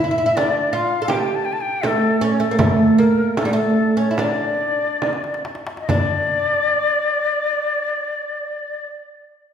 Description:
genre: Arabic maqam ensemble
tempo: 67-84 BPM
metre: 4/4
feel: straight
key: D maqam nahawand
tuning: A4 = 441 Hz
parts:
  - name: oud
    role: melody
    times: 0.0-8.9 s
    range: G3 to A4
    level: -19 LUFS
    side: right 2 dB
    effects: none
  - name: breathy bright ney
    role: second line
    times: 0.0-8.9 s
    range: A4 to A5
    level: -21 LUFS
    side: left 3 dB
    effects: none
  - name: darbuka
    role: percussion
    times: 0.0-6.3 s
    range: none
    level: -29 LUFS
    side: left 2 dB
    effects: none
  - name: frame drum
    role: percussion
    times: 0.4-6.3 s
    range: none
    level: -25 LUFS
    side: right 2 dB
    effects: none
room: wet recital hall reverb, RT60 1.6 s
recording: recorded in a church or concert hall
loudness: -17 LUFS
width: side -8 dB against mid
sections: 0.0-5.9 A section; 5.9-9.5 B section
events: slowing down 0.0-5.9; drum fill 5.0-5.9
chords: none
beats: 0.38 1.11 1.85 | 2.60 3.38 4.18 5.02 | 5.89 6.79 7.68 8.57

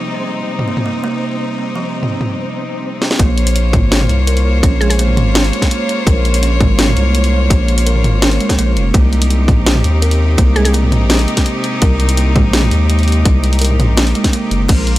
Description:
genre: half-time drum and bass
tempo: 167 BPM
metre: 4/4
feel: half-time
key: unclear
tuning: A4 = 438 Hz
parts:
  - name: clear chamber cello section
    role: sustained chords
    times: 0.0-15.0 s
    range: C3 to Db5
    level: -20 LUFS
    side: left 1 dB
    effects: sidechain pumping
  - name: buzzing kalimba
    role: arpeggios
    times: 0.0-14.9 s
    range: F3 to Bb4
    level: -21 LUFS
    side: right 3 dB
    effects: tape echo
  - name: flickering grainy texture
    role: texture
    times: 0.0-2.5, 14.7-15.0 s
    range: C4 to C6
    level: -28 LUFS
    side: left 1 dB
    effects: built-in reverb
  - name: drum and bass drum kit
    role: drums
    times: 0.6-15.0 s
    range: crash cymbal, hi-hat, snare drum, toms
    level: -17 LUFS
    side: equal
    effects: none
  - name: saturated sub bass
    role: bass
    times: 3.2-15.0 s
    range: F1 to Eb2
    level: -13 LUFS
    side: equal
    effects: none
  - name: electronic kick drum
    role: drums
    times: 3.2-14.8 s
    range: none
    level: -13 LUFS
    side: equal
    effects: overdrive
  - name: mallet-like synth pluck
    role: melody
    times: 4.8-5.0, 10.6-10.7 s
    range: Ab4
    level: -25 LUFS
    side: right 1 dB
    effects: chorus, tape echo
room: digital ambience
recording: dry, gritty hardware recording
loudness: -11 LUFS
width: side -16 dB against mid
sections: 0.0-3.2 A section; 3.2-15.0 B section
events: drum fill 3.0; drop 3.2-15.0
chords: 0.0 Cm; 3.2 Bbmadd9; 8.9 Cm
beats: | 0.32 0.68 1.04 1.40 | 1.76 2.12 2.48 2.83 | 3.19 3.55 3.91 4.27 | 4.63 4.99 5.35 5.71 | 6.07 6.43 6.79 7.15 | 7.50 7.87 8.22 8.58 | 8.94 9.30 9.66 10.02 | 10.38 10.74 11.10 11.46 | 11.82 12.18 12.54 12.89 | 13.25 13.61 13.97 14.33 | 14.69

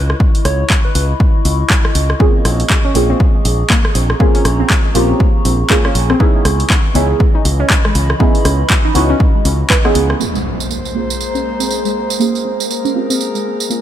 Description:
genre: deep house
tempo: 120 BPM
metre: 4/4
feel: swing 59% on 16ths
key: unclear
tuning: A4 = 440 Hz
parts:
  - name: modern bright fingered electric bass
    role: bass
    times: 0.0-10.1 s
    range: Bb1 to Db2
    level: -15 LUFS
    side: equal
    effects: sidechain pumping
  - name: warbly tape-like pad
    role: texture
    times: 0.0-13.8 s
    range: Fb3 to Db6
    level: -24 LUFS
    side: left 2 dB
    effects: chorus, built-in reverb, sidechain pumping
  - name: punchy analog drum machine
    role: drums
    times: 0.1-13.8 s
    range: handclaps, hi-hat, rim click, tambourine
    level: -18 LUFS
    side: right 1 dB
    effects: none
  - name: electronic kick drum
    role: drums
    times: 0.2-9.8 s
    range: none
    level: -13 LUFS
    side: equal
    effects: overdrive
  - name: soft struck synth lead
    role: melody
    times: 0.5-1.0 s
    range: Cb5 to Db5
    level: -25 LUFS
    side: right 1 dB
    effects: chorus, dub echo
  - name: warbly dusty pluck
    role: arpeggios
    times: 2.2-13.7 s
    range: Ab3 to Cb5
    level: -22 LUFS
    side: right 2 dB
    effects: chorus, phaser, sidechain pumping, digital delay
  - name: deep mellow chord stab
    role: stabs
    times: 2.2-13.8 s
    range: Bb3 to Ab4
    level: -19 LUFS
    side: right 2 dB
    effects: chorus, phaser, sidechain pumping, ping-pong delay
  - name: airy breathy pad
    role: sustained chords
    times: 10.5-13.8 s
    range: Ab3 to C5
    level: -22 LUFS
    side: left 1 dB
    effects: chorus, sidechain pumping
  - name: impact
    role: sound effects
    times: 10.2-12.2 s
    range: none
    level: -24 LUFS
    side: equal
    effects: none
room: light reverb, digital ambience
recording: none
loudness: -11 LUFS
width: side -11 dB against mid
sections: 0.0-10.2 A section; 10.2-13.8 B section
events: fade-in on ambient pad 0.0-10.2; impact 10.2-12.2; filter sweep on synth pluck 10.2-13.8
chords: 0.0 Dbm9; 2.2 Bbm9; 6.2 Dbm9; 10.2 Bbm9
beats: | 0.20 0.70 1.20 1.70 | 2.20 2.70 3.20 3.70 | 4.20 4.70 5.20 5.70 | 6.20 6.70 7.20 7.70 | 8.20 8.70 9.20 9.70 | 10.20 10.70 11.20 11.70 | 12.20 12.70 13.20 13.70

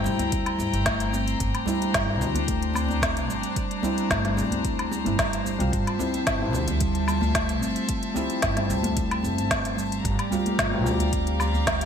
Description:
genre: organic downtempo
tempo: 111 BPM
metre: 4/4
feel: straight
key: unclear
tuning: A4 = 440 Hz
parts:
  - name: felt-muted upright piano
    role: accompaniment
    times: 0.0-11.9 s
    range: G3 to F4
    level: -30 LUFS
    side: left 1 dB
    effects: wide subtle chorus, sidechain pumping, ping-pong delay
  - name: warm chamber string section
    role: sustained chords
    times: 0.0-11.9 s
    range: F3 to Bb5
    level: -31 LUFS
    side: left 3 dB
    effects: sidechain pumping
  - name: steel tongue drum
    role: arpeggios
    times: 0.0-11.8 s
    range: G3 to C4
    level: -30 LUFS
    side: right 1 dB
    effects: ping-pong delay
  - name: upright bass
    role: bass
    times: 0.0-11.9 s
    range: F1 to D2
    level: -28 LUFS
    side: equal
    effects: sidechain pumping
  - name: djembe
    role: percussion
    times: 0.0-11.6 s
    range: none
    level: -36 LUFS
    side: right 2 dB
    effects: none
  - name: organic electronic drum kit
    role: drums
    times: 0.1-11.9 s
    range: hi-hat, shaker, snare drum, woodblock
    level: -28 LUFS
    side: left 1 dB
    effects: gated reverb
  - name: electronic kick drum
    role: drums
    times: 0.3-11.8 s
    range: none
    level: -30 LUFS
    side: equal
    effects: none
room: light reverb, small room reverb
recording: bright 1980s-style digital production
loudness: -22 LUFS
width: side -8 dB against mid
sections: 0.0-11.9 A section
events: none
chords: 0.0 C7; 1.4 Bb69/G; 5.7 Fmaj7/G; 10.0 Gm7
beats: 0.32 0.86 | 1.40 1.94 2.48 3.02 | 3.56 4.10 4.64 5.18 | 5.72 6.27 6.81 7.35 | 7.89 8.43 8.97 9.51 | 10.05 10.59 11.13 11.67

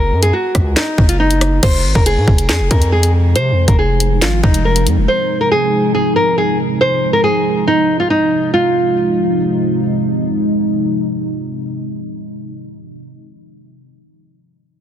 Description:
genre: hip hop, drill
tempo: 139 BPM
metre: 4/4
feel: half-time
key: F phrygian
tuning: A4 = 440 Hz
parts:
  - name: nylon-string guitar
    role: melody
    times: 0.0-9.8 s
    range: Eb4 to C5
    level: -15 LUFS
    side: equal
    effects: low-pass filter
  - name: distorted 808-style bass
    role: bass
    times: 0.0-5.1 s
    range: F1 to C3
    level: -15 LUFS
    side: equal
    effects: distortion
  - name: drill drum kit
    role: drums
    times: 0.2-5.0 s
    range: crash cymbal, handclaps, hi-hat, kick drum, rim click, snare drum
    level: -15 LUFS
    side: equal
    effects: none
  - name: deep dark ambient pad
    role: sustained chords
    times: 3.0-12.7 s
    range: C3 to Eb4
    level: -18 LUFS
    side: equal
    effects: chorus, built-in reverb
room: light reverb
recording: dense, heavily limited modern master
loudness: -12 LUFS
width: side -10 dB against mid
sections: 0.0-1.6 A section; 1.6-8.5 B section; 8.5-12.0 C section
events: none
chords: 0.0 Gb5; 1.6 Fm7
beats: 0.33 0.77 1.20 | 1.63 2.06 2.49 2.92 | 3.35 3.79 4.22 4.65 | 5.08 5.51 5.95 6.38 | 6.81 7.24 7.67 8.10 | 8.54 8.97 9.40 9.83 | 10.26 10.69 11.12 11.56

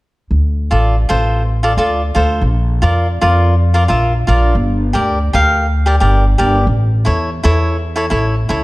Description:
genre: calypso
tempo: 114 BPM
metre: 4/4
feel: swing 53% on 16ths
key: D minor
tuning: A4 = 439 Hz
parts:
  - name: upright bass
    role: bass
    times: 0.3-8.6 s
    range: G1 to F2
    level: -14 LUFS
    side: equal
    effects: none
  - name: cavaquinho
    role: accompaniment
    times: 0.7-8.6 s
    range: E4 to F5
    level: -16 LUFS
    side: equal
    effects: none
room: light reverb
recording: dark, warm production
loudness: -12 LUFS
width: side -20 dB against mid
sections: 0.3-8.6 A section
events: none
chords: 0.3 Dm; 2.4 Bb; 4.5 Gm; 6.7 A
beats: | 0.31 0.84 1.37 1.90 | 2.43 2.96 3.48 4.01 | 4.54 5.07 5.60 6.12 | 6.65 7.18 7.71 8.24

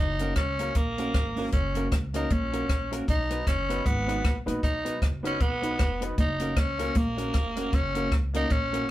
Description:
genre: ska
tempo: 155 BPM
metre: 4/4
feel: swing 59% on 8ths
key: F# major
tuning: A4 = 438 Hz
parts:
  - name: raspy tenor saxophone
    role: melody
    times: 0.0-8.9 s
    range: A#3 to D#4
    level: -30 LUFS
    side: equal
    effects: none
  - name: upright bass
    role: bass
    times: 0.0-8.8 s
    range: E#1 to C#2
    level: -32 LUFS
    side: equal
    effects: none
  - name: clean electric guitar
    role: accompaniment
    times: 0.2-8.9 s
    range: A#3 to B4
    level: -36 LUFS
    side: right 2 dB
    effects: none
  - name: warm upright piano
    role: stabs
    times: 0.2-8.8 s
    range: A#3 to B4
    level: -37 LUFS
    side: left 2 dB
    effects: none
  - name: compact cocktail drum kit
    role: drums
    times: 0.2-8.8 s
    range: hi-hat, kick drum, rim click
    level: -27 LUFS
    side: equal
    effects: none
room: moderate small room reverb, RT60 0.6 s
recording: band playing live in one room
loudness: -24 LUFS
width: side -14 dB against mid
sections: 0.0-8.9 A section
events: none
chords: 0.0 F#; 3.1 B; 6.2 F#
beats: 0.36 0.75 1.14 | 1.53 1.92 2.30 2.69 | 3.08 3.47 3.86 4.24 | 4.63 5.02 5.41 5.79 | 6.18 6.57 6.96 7.35 | 7.73 8.12 8.51 8.90

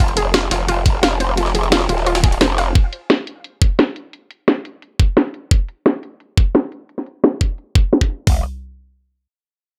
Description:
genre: dark technical drum and bass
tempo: 174 BPM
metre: 4/4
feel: straight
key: F minor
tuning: A4 = 440 Hz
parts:
  - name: warbly dusty pluck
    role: arpeggios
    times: 0.0-2.7 s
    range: F4 to F5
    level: -25 LUFS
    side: equal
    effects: chorus, sidechain pumping, tape echo
  - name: growl bass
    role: bass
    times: 0.0-2.7, 8.3-8.4 s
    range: Eb1 to F1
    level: -21 LUFS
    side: equal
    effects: chorus, tube saturation
  - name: drum and bass drum kit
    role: drums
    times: 0.0-8.4 s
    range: hi-hat, kick drum, toms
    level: -17 LUFS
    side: equal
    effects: none
  - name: drum and bass drum kit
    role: drums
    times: 0.0-8.2 s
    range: hi-hat, snare drum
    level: -18 LUFS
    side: equal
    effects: low-pass filter on hats, low-pass filter on cymbals, low-pass filter on perc, low-pass filter on snare
  - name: jungle sampler-style drum kit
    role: drums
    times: 0.0-2.7 s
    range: ride cymbal, snare drum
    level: -28 LUFS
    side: equal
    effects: high-pass filter on cymbals, high-pass filter on snare, high-pass filter on room
room: little or no reverb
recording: none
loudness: -18 LUFS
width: mono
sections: 0.0-8.3 A section; 8.3-9.7 B section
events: filter sweep on drum 0.0-8.3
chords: none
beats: | 0.00 0.34 0.69 1.03 | 1.38 1.72 2.06 2.41 | 2.75 3.10 3.44 3.79 | 4.13 4.48 4.82 5.17 | 5.51 5.86 6.20 6.55 | 6.89 7.24 7.58 7.93 | 8.27

